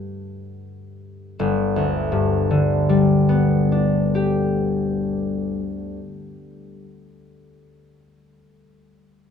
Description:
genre	classical, solo harp piece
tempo	30 BPM (dotted quarters)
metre	6/8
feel	rubato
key	G major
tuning	A4 = 440 Hz
part	concert harp	solo	0.0-6.8 s	G1 to G6	-19 LUFS	left 2 dB	none
room	light reverb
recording	close, detailed microphones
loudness	-18 LUFS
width	side -7 dB against mid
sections	0.0-1.4 A section; 1.4-5.4 B section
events	slowing down 0.0-1.4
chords	0.0 G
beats	| 1.39 3.38

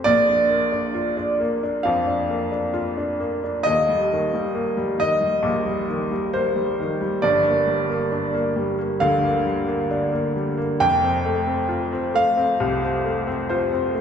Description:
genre	pop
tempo	67 BPM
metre	4/4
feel	straight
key	Bb major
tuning	A4 = 440 Hz
part	warm grand piano	melody	0.0-14.0 s	C5 to G5	-22 LUFS	right 1 dB	none
part	clear upright piano	accompaniment	0.0-14.0 s	Eb1 to F4	-22 LUFS	left 1 dB	none
room	wet recital hall reverb, RT60 1.3 s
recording	recorded in a church or concert hall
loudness	-19 LUFS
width	side -7 dB against mid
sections	0.1-14.0 A section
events	none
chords	0.1 Bb; 3.6 Eb6; 7.2 Gm; 10.8 Fadd9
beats	| 0.06 0.95 1.85 2.74 | 3.64 4.54 5.43 6.33 | 7.22 8.12 9.01 9.91 | 10.80 11.70 12.60 13.49

